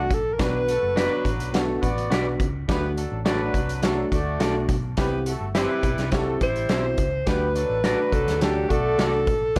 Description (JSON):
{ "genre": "uptempo 1960s-style soul", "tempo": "105 BPM", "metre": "4/4", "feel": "straight", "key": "D mixolydian", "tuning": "A4 = 440 Hz", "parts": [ { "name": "breathy alto saxophone", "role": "melody", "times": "0.0-1.6, 6.4-9.6 s", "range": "F#4 to C5", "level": "-26 LUFS", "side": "equal", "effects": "none" }, { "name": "warm horn section", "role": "second line", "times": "0.0-9.6 s", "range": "F#3 to D5", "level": "-32 LUFS", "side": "equal", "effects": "slapback echo" }, { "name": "mellow tine electric piano", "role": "accompaniment", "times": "0.0-9.6 s", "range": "A3 to G4", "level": "-30 LUFS", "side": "equal", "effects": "none" }, { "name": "hollow-body short-scale picked electric bass", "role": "bass", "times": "0.0-9.6 s", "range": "F#1 to D2", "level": "-32 LUFS", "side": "equal", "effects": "none" }, { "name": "vintage drum kit", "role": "drums", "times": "0.1-9.6 s", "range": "hi-hat, kick drum, snare drum", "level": "-29 LUFS", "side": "equal", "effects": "none" }, { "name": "electric guitar through a small old amp", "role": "stabs", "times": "1.0-9.1 s", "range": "E4 to D5", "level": "-36 LUFS", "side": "equal", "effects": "spring reverb" } ], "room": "light reverb", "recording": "none", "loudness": "-23 LUFS", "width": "mono", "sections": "0.0-9.6 A section", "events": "none", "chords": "0.4 Bm; 2.7 D; 5.0 C; 7.3 D" }